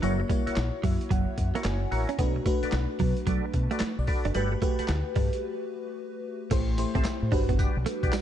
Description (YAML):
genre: R&B, new jack swing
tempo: 111 BPM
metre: 4/4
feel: swing 64% on 16ths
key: unclear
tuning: A4 = 443 Hz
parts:
  - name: FM electric piano with soft pad layer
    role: accompaniment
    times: 0.0-8.2 s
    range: G3 to A#5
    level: -32 LUFS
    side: left 1 dB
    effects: chorus, phaser
  - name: direct-recorded clean electric guitar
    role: riff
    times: 0.0-8.2 s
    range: F#3 to D4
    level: -33 LUFS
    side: right 7 dB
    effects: wide subtle chorus
  - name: percussive tonewheel organ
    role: stabs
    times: 0.0-8.2 s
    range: E4 to F#5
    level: -36 LUFS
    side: left 1 dB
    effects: overdrive, chorus vibrato, slow rotary speaker, tape echo
  - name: deep dub fingered electric bass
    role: bass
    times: 0.0-8.1 s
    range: F#1 to B2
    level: -29 LUFS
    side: equal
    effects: none
  - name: boom bap sampler-style drum kit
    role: drums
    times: 0.0-8.2 s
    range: crash cymbal, handclaps, hi-hat, kick drum, snare drum, tambourine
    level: -29 LUFS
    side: equal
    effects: none
room: light reverb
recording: dark, warm production, nothing above 11.0 kHz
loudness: -25 LUFS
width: side -10 dB against mid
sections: 0.0-6.5 A section; 6.5-8.2 B section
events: FM electric piano fill 0.6-2.2; break 5.4-6.5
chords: 0.0 F#7; 2.2 Bm7; 4.3 Gmaj9; 6.5 Am7; 7.3 Gmaj7